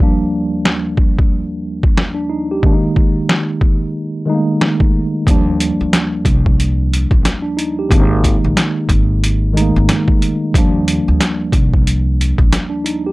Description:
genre	hip hop, boom-bap hip-hop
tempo	91 BPM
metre	4/4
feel	swing 61% on 16ths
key	Eb major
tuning	A4 = 439 Hz
part	mellow tine electric piano	accompaniment	0.0-13.1 s	Eb2 to G4	-17 LUFS	equal	medium stereo tremolo, cassette tape, high-pass filter, low-pass filter
part	boom bap sampler-style drum kit	drums	0.7-13.0 s	hi-hat, kick drum, snare drum	-14 LUFS	equal	none
part	upright bass	bass	5.3-12.5 s	Ab1 to Eb2	-16 LUFS	equal	none
room	little or no reverb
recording	dry, gritty hardware recording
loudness	-12 LUFS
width	side -20 dB against mid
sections	0.0-13.1 A section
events	break 0.0-5.3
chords	0.0 Ebmaj7; 2.6 Absus2; 5.3 Ebmaj7; 7.9 Absus2; 10.5 Ebmaj7

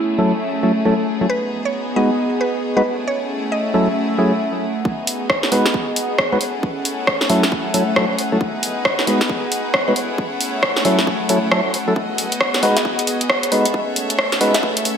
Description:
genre	UK garage, two-step garage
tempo	135 BPM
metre	4/4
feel	swing 62% on 16ths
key	G# phrygian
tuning	A4 = 440 Hz
part	mallet-like synth pluck	melody	0.0-3.7 s	E4 to D#5	-24 LUFS	right 2 dB	chorus, digital delay
part	clear studio violin section	sustained chords	0.0-15.0 s	A3 to E5	-28 LUFS	equal	sidechain pumping, low-pass filter
part	airy breathy pad	texture	0.0-15.0 s	A3 to F#5	-23 LUFS	equal	chorus, sidechain pumping
part	percussive organ stab	stabs	0.2-14.5 s	F#3 to B4	-20 LUFS	equal	chorus, digital delay
part	electronic kick drum	drums	4.9-14.7 s	none	-25 LUFS	equal	high-pass filter on kick, high-pass filter on room
part	house drum kit	drums	5.1-15.0 s	bongos, hi-hat, rim click, snare drum	-18 LUFS	equal	high-pass filter on hats, high-pass filter on snare, high-pass filter on perc, high-pass filter on room, gated reverb
room	wet lush hall reverb, RT60 1.7 s, digital ambience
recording	bright 1980s-style digital production, high-pass filter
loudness	-16 LUFS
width	side -7 dB against mid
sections	0.0-4.9 A section; 4.9-15.0 B section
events	build-up 4.9-15.0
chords	0.0 F#m7; 1.3 G#m7; 2.9 F#m7; 4.9 G#m7; 6.4 F#m7; 8.4 G#m7; 10.0 F#m7; 12.0 G#m7; 13.5 F#m7

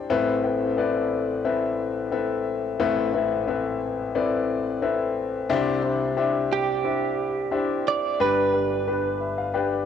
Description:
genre	pop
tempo	89 BPM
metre	4/4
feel	straight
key	unclear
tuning	A4 = 440 Hz
part	warm concert grand piano	accompaniment	0.0-9.9 s	G1 to C6	-23 LUFS	left 4 dB	cassette tape
part	direct-recorded clean electric guitar	melody	6.5-9.9 s	G4 to D5	-25 LUFS	right 9 dB	cassette tape
room	moderate lush hall reverb, RT60 2.7 s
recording	home recording on cassette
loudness	-22 LUFS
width	side -8 dB against mid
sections	0.0-9.9 A section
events	grand piano fill 8.9-9.9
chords	0.1 Amadd9; 5.5 Cadd9; 8.2 G

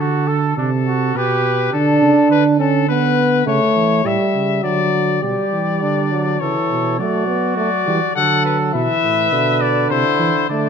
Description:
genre	classical, imitative canzona for brass ensemble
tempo	103 BPM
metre	3/4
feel	straight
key	G major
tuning	A4 = 440 Hz
part	clear trumpet	melody	0.0-10.7 s	A4 to F#5	-19 LUFS	left 10 dB	none
part	clear flugelhorn	second line	0.0-1.7, 5.2-10.7 s	D4 to B4	-22 LUFS	right 6 dB	none
part	warm tuba	bass	0.0-10.7 s	A2 to F#3	-21 LUFS	right 4 dB	none
part	warm euphonium	accompaniment	1.7-10.7 s	D3 to D4	-18 LUFS	right 2 dB	none
room	moderate scoring stage reverb, RT60 1.5 s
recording	none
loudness	-14 LUFS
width	side -7 dB against mid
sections	0.0-5.2 A section; 5.2-10.7 B section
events	none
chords	0.0 D; 1.2 G/B; 1.7 D5; 2.9 Bm/D; 3.5 A/C#; 4.6 D; 5.2 G5; 6.4 A/C#; 7.0 D/F#; 8.2 D; 8.7 Bm; 9.9 Cadd9

